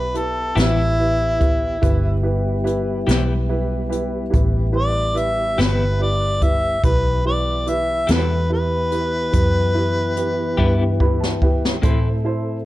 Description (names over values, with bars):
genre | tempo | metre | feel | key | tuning
slow blues | 48 BPM (dotted quarters) | 12/8 | straight | E minor | A4 = 440 Hz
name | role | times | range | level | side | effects
mellow harmonica | melody | 0.0-11.0 s | E4 to E5 | -22 LUFS | equal | overdrive
clear upright piano | accompaniment | 0.0-12.6 s | E4 to B5 | -27 LUFS | right 3 dB | none
tonewheel organ | sustained chords | 0.0-12.7 s | E3 to A4 | -27 LUFS | left 1 dB | overdrive, slow rotary speaker
vintage muted fingered electric bass | bass | 0.0-12.7 s | G1 to A2 | -21 LUFS | equal | none
jazz brush drum kit | drums | 0.1-12.0 s | hi-hat, kick drum, snare drum | -20 LUFS | equal | none
clean electric guitar | accompaniment | 0.6-12.1 s | A2 to G4 | -28 LUFS | left 5 dB | tremolo
room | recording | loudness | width
light reverb, studio reverb | dark, warm production | -17 LUFS | side -16 dB against mid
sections
0.0-12.7 A section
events
drum fill 10.6-11.8; upright piano fill 10.6-11.8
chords
0.0 Em; 11.8 Am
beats
0.57 | 1.82 3.08 4.33 5.58 | 6.83 8.09 9.33 10.58 | 11.83